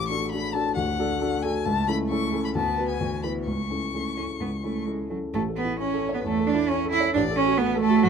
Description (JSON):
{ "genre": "quick classical-period movement for piano trio", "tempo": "133 BPM", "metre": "4/4", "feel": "straight", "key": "A major", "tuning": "A4 = 440 Hz", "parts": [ { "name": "dark violin", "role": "melody", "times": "0.0-8.1 s", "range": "F#4 to C#6", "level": "-30 LUFS", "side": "left 8 dB", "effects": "none" }, { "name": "rich cello", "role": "second line", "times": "0.0-8.1 s", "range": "E3 to E4", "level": "-26 LUFS", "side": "right 7 dB", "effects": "none" }, { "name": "dark grand piano", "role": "accompaniment", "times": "0.0-8.1 s", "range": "A1 to C#5", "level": "-27 LUFS", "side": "left 2 dB", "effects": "none" } ], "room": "light reverb", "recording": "close, detailed microphones", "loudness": "-23 LUFS", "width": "side -6 dB against mid", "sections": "0.0-5.3 A section; 5.3-8.1 A section", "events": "none", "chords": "0.0 D/A; 1.7 A/C#; 2.6 Bm/D; 3.0 E7/D; 3.5 A/C#; 5.3 A; 7.1 A69" }